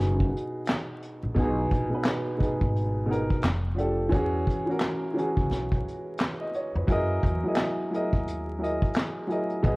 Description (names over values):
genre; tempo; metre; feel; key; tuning
lo-fi hip hop; 87 BPM; 4/4; swing 61% on 16ths; B major; A4 = 440 Hz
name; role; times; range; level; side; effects
dark upright piano; accompaniment; 0.0-9.8 s; B2 to D#5; -28 LUFS; equal; none
upright bass; bass; 0.0-9.8 s; F1 to F#2; -29 LUFS; equal; none
vintage brush drum kit; drums; 0.0-9.8 s; handclaps, hi-hat, kick drum, snare drum; -27 LUFS; equal; none
room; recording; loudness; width
light reverb; worn, warbling old tape, cassette tape, vinyl crackle, warbly pitch drift; -24 LUFS; side -24 dB against mid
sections
0.0-9.8 A section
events
none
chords
0.0 B6; 3.4 F69; 4.1 E69; 6.9 F#13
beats
0.67 | 1.36 2.05 2.74 3.43 | 4.12 4.81 5.50 6.19 | 6.88 7.57 8.26 8.95 | 9.64